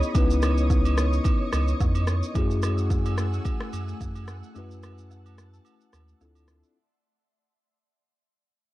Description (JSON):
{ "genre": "amapiano", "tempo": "109 BPM", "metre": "4/4", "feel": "swing 55% on 16ths", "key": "unclear", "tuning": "A4 = 438 Hz", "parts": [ { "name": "mellow tine electric piano", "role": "accompaniment", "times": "0.0-6.8 s", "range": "A3 to B4", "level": "-30 LUFS", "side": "left 4 dB", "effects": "none" }, { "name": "ethereal airy pad", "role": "sustained chords", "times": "0.0-6.8 s", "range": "A3 to E6", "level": "-35 LUFS", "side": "right 1 dB", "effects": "ensemble chorus, built-in reverb, sidechain pumping" }, { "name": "deep house drum kit", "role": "drums", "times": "0.0-6.8 s", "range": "kick drum, rim click, shaker", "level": "-26 LUFS", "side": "equal", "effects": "none" }, { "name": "agogo bells and woodblock", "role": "percussion", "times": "0.1-6.5 s", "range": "none", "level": "-39 LUFS", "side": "right 10 dB", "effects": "none" }, { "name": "warm sub bass", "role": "bass", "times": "0.2-6.6 s", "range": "C#2 to F#2", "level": "-25 LUFS", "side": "equal", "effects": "none" } ], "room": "little or no reverb", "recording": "dark, warm production", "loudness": "-22 LUFS", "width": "side -16 dB against mid", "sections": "0.0-6.8 A section", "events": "fade-out 0.0-6.8", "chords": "0.0 C#m9; 2.4 F#m9; 6.2 Dm9", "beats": "| 0.15 0.70 1.25 1.80 | 2.35 2.90 3.46 4.00 | 4.55 5.11 5.66 6.21" }